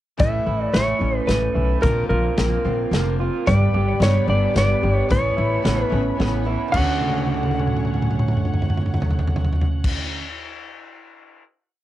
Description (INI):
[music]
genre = folk rock and heartland rock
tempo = 110 BPM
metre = 3/4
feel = straight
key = D major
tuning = A4 = 440 Hz
[part]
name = clean lap steel guitar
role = melody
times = 0.2-9.9 s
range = Bb4 to F#5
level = -24 LUFS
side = equal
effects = cassette tape, analog delay
[part]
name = picked steel-string acoustic guitar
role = accompaniment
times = 0.2-10.3 s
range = G2 to G4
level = -30 LUFS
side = left 10 dB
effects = cassette tape
[part]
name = electric guitar through a small old amp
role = riff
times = 0.2-10.3 s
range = G2 to G4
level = -27 LUFS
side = right 8 dB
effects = lush chorus, cassette tape
[part]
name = upright bass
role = bass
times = 0.2-9.9 s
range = F1 to D2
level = -22 LUFS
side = equal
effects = none
[part]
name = natural country drum kit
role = drums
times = 0.2-11.4 s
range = crash cymbal, hi-hat, kick drum, snare drum, toms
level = -23 LUFS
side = equal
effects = none
[part]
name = rich studio string section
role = sustained chords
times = 3.5-9.9 s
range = G4 to B5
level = -35 LUFS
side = left 4 dB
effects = cassette tape
[sound]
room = little or no reverb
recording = home recording on cassette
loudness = -18 LUFS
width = side -14 dB against mid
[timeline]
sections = 0.2-6.7 pre-chorus; 6.7-10.0 final chord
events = drum fill 7.0-9.8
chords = 0.2 A; 1.8 Bbadd9; 3.5 G; 5.1 Aadd9; 6.7 Dmaj7